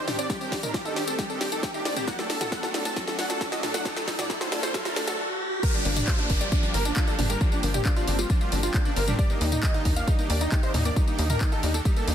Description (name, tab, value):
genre	uplifting trance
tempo	135 BPM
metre	4/4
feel	straight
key	G minor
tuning	A4 = 440 Hz
part	dense compressed supersaw	melody	0.0-12.1 s	D4 to A5	-31 LUFS	right 1 dB	sidechain pumping, dub echo
part	supersaw pad	sustained chords	0.0-12.1 s	Eb3 to A4	-35 LUFS	right 2 dB	sidechain pumping
part	analog pluck	arpeggios	0.0-12.1 s	F3 to A4	-34 LUFS	left 2 dB	chorus, cassette tape, sidechain pumping, dub echo
part	riser and downlifter	sound effects	0.6-9.2 s	none	-34 LUFS	equal	none
part	house drum kit	drums	0.1-12.1 s	crash cymbal, handclaps, hi-hat, snare drum, tambourine, toms	-30 LUFS	equal	none
part	electronic kick drum	drums	0.3-11.9 s	none	-25 LUFS	equal	none
part	warm concert grand piano	second line	5.6-12.1 s	D4 to F5	-37 LUFS	left 2 dB	none
part	tight sequencer bass	bass	5.9-12.1 s	G1 to Eb2	-27 LUFS	equal	sidechain pumping
room	light reverb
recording	dense, heavily limited modern master, high-pass filter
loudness	-23 LUFS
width	side -9 dB against mid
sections	0.0-5.6 A section; 5.6-12.1 B section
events	build-up 0.0-5.6; drum fill 0.0-5.2; filter sweep on synth pluck 0.0-5.6; riser 0.6-5.6; drop 5.6-12.1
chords	0.0 Cmadd9; 2.1 D; 5.6 Gm7; 9.2 Ebmaj7